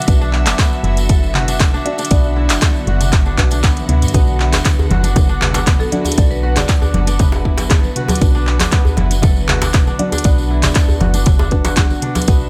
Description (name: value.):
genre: afro house.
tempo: 118 BPM.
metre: 4/4.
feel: straight.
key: B minor.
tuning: A4 = 440 Hz.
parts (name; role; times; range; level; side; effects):
warm studio string section; sustained chords; 0.0-12.5 s; D3 to E5; -27 LUFS; equal; sidechain pumping.
kora; arpeggios; 0.0-12.5 s; B3 to A4; -28 LUFS; equal; sidechain pumping, tape echo.
afro-pop drum kit; drums; 0.0-12.4 s; handclaps, hi-hat, toms; -22 LUFS; equal; studio reverb.
felt-muted upright piano; stabs; 0.1-12.5 s; D4 to D5; -28 LUFS; equal; sidechain pumping, tape echo.
woody FM bass; bass; 0.1-12.5 s; F#1 to D2; -20 LUFS; equal; sidechain pumping.
electronic kick drum; drums; 0.1-12.4 s; none; -16 LUFS; equal; studio reverb.
tambourine; percussion; 0.1-12.5 s; none; -33 LUFS; equal; none.
congas; percussion; 4.1-12.4 s; none; -25 LUFS; equal; none.
djembe; percussion; 4.5-12.3 s; none; -23 LUFS; equal; none.
marimba with medium hard mallets; melody; 5.8-7.1 s; A4 to D5; -29 LUFS; equal; tape echo.
room: little or no reverb.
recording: none.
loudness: -14 LUFS.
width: mono.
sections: 0.0-12.5 A section.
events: drum fill 3.8-4.1.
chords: 0.0 Bm.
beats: | 0.08 0.58 1.09 1.60 | 2.11 2.62 3.13 3.64 | 4.14 4.65 5.16 5.67 | 6.18 6.69 7.20 7.70 | 8.21 8.72 9.23 9.74 | 10.25 10.76 11.26 11.77 | 12.28.